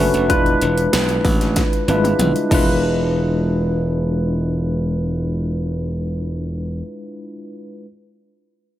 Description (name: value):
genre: polished 1980s jazz-funk pop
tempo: 95 BPM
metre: 4/4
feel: straight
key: unclear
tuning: A4 = 440 Hz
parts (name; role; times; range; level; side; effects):
- mellow tine electric piano; accompaniment; 0.0-7.9 s; G3 to B4; -20 LUFS; left 1 dB; fast stereo tremolo, analog chorus
- glassy slap bass; bass; 0.0-6.8 s; E1 to B1; -21 LUFS; equal; none
- big-room dance drum kit; drums; 0.1-2.7 s; crash cymbal, hi-hat, kick drum, snare drum, toms; -20 LUFS; equal; none
room: light reverb, digital ambience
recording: bright 1980s-style digital production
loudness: -16 LUFS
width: side -13 dB against mid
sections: 0.0-2.8 A section; 2.8-5.3 B section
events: drum fill 1.6-2.8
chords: 0.3 E7b9